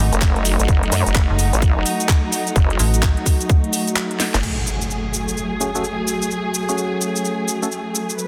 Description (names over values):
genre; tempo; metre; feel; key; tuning
bass house; 128 BPM; 4/4; swing 62% on 16ths; F# dorian; A4 = 439 Hz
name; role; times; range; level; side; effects
muted studio string section; sustained chords; 0.0-8.3 s; F#3 to B4; -28 LUFS; equal; sidechain pumping
metallic FM bass; bass; 0.0-3.1 s; F#1 to A1; -20 LUFS; equal; overdrive, sidechain pumping
warbly tape-like pad; texture; 0.0-8.3 s; A3 to G#5; -30 LUFS; equal; chorus, built-in reverb, phaser, sidechain pumping
vowel-sweep wobble bass; bass; 0.1-4.4 s; F#1 to F#2; -21 LUFS; equal; chorus, sidechain pumping
garage drum kit; drums; 0.1-8.3 s; crash cymbal, handclaps, hi-hat, shaker, snare drum; -25 LUFS; equal; none
electronic kick drum; drums; 0.2-3.6 s; none; -18 LUFS; equal; none
impact; sound effects; 4.4-6.3 s; none; -31 LUFS; equal; none
percussive organ stab; stabs; 5.6-7.7 s; A3 to A4; -28 LUFS; equal; chorus, sidechain pumping, tape echo
room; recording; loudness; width
moderate lush hall reverb, RT60 1.8 s; dense, heavily limited modern master; -19 LUFS; mono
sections
0.0-4.4 A section; 4.4-8.3 B section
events
drop 0.0-4.4; break 4.0-4.4; drum fill 4.2; impact 4.4-6.3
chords
0.0 F#m; 4.4 F#madd9